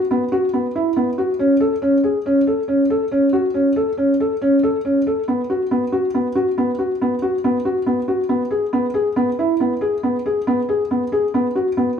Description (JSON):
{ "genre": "contemporary instrumental, contemporary", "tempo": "139 BPM", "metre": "7/4", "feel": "straight", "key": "E major", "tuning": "A4 = 441 Hz", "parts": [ { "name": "felt-muted upright piano", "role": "solo", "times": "0.1-11.9 s", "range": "B3 to A4", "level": "-16 LUFS", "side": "equal", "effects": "none" } ], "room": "moderate recital hall reverb, RT60 1.4 s", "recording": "studio ambience", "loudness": "-16 LUFS", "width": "side -7 dB against mid", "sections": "0.0-12.0 A section", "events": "none", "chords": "none" }